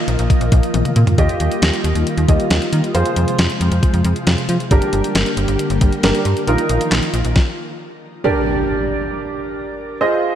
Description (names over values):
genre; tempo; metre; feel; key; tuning
synth-pop; 136 BPM; 4/4; straight; unclear; A4 = 439 Hz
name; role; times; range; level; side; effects
clear baby grand piano; accompaniment; 0.0-10.4 s; D4 to Eb5; -20 LUFS; right 2 dB; analog chorus, shimmer reverb
soft string machine; sustained chords; 0.0-7.3 s; C3 to G4; -22 LUFS; left 1 dB; ensemble chorus, shimmer reverb
slap-like FM bass; bass; 0.1-7.3 s; G1 to F3; -18 LUFS; equal; none
clean 12-bit digital drum machine; drums; 0.1-7.5 s; handclaps, hi-hat, kick drum, snare drum, toms; -18 LUFS; equal; none
impact; sound effects; 8.2-10.0 s; none; -25 LUFS; equal; none
room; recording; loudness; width
moderate lush hall reverb, RT60 1.9 s; bright 1980s-style digital production; -14 LUFS; side -10 dB against mid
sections
0.0-1.2 A section; 1.2-8.2 B section; 8.2-10.4 A section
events
drum fill 0.7-1.2; stop 7.4-8.2; impact 8.2-10.0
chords
0.0 Bbsus4; 1.2 Ebadd9; 2.9 Fm; 4.7 Gm; 6.5 Bbsus4; 8.2 Gm